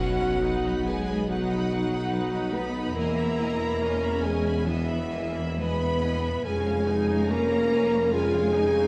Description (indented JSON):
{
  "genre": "classical",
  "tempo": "61-74 BPM",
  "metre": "4/4",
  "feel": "rubato",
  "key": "unclear",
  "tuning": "A4 = 440 Hz",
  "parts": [
    { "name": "rich studio violin section", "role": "melody", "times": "0.0-8.9 s", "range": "E5 to B5", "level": "-39 LUFS", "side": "equal", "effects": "none" },
    { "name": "rich studio violin section", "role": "second line", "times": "0.0-8.9 s", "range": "B4 to B5", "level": "-42 LUFS", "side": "equal", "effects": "none" },
    { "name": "rich studio viola section", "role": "accompaniment", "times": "0.0-8.9 s", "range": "G#3 to E#4", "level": "-37 LUFS", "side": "equal", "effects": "none" },
    { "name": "dark French horn section", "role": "sustained chords", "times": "0.0-8.9 s", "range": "E4 to B4", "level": "-30 LUFS", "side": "equal", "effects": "none" },
    { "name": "concert harp", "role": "arpeggios", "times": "0.0-8.9 s", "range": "E2 to C#5", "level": "-39 LUFS", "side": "equal", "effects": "none" },
    { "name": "clear studio cello section", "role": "bass", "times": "0.0-8.9 s", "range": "E3 to B3", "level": "-34 LUFS", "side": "equal", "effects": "none" },
    { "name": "warm studio double bass section", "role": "bass", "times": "0.0-8.9 s", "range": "B1 to E#2", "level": "-35 LUFS", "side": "equal", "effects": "none" },
    { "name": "warm tuba", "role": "bass", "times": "0.0-8.9 s", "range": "E1 to B1", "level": "-36 LUFS", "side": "equal", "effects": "none" },
    { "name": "timpani", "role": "percussion", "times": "0.0-0.8 s", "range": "B2", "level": "-43 LUFS", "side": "equal", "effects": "none" }
  ],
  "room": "wet scoring stage reverb, RT60 1.6 s",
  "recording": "dark, warm production",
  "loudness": "-26 LUFS",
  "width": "mono",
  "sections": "0.0-8.9 A section",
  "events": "none",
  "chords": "0.0 B; 3.0 Emaj7; 6.5 C#7/E#"
}